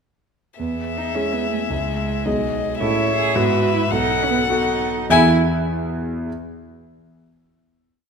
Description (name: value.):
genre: quick classical-period movement for piano quartet.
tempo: 99-110 BPM (dotted quarters).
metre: 6/8.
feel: straight.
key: E major.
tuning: A4 = 441 Hz.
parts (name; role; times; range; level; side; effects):
rich violin; melody; 0.6-5.3 s; D#5 to G#5; -22 LUFS; left 9 dB; none.
warm cello; second line; 0.6-5.3 s; G#3 to G#4; -24 LUFS; right 6 dB; none.
warm concert grand piano; accompaniment; 0.6-6.3 s; B1 to E5; -22 LUFS; equal; none.
warm viola; accompaniment; 0.6-5.3 s; E4 to C#5; -28 LUFS; right 2 dB; none.
room: wet concert hall reverb, RT60 1.8 s.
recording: none.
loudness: -17 LUFS.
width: side -6 dB against mid.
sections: 0.6-5.1 A section; 5.1-6.3 final chord.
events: none.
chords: 0.6 E; 1.7 C#m; 2.3 G#m/B; 2.8 A; 3.4 E/G#; 3.9 B7; 5.1 E.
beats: | 0.59 1.15 | 1.71 2.26 | 2.81 3.36 | 3.92 4.50 | 5.10 5.68.